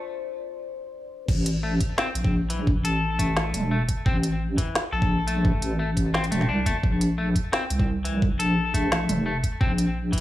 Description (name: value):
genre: half-time drum and bass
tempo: 173 BPM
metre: 4/4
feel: swing 54% on 16ths, half-time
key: A phrygian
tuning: A4 = 439 Hz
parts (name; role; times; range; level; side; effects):
- deep dark ambient pad; sustained chords; 0.0-1.2 s; F4 to D5; -37 LUFS; left 8 dB; chorus, built-in reverb, sidechain pumping
- deep soft wobble bass; bass; 1.3-10.1 s; E1 to C2; -24 LUFS; equal; chorus
- electronic kick drum; drums; 1.3-10.2 s; none; -24 LUFS; equal; none
- organic electronic drum kit; drums; 1.3-10.2 s; crash cymbal, hi-hat, snare drum, toms; -29 LUFS; right 1 dB; overdrive
- clean electric guitar; arpeggios; 1.6-10.2 s; E3 to A4; -29 LUFS; left 3 dB; digital delay
room: light reverb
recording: high-pass filter, small room ambience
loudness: -22 LUFS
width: side -14 dB against mid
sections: 0.0-1.3 A section; 1.3-10.2 B section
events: break 0.0-1.3; build-up 0.0-1.3; filter sweep 0.0-1.3; drop 1.3-10.2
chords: 0.0 Bb (rootless); 1.3 A5; 6.8 Bb5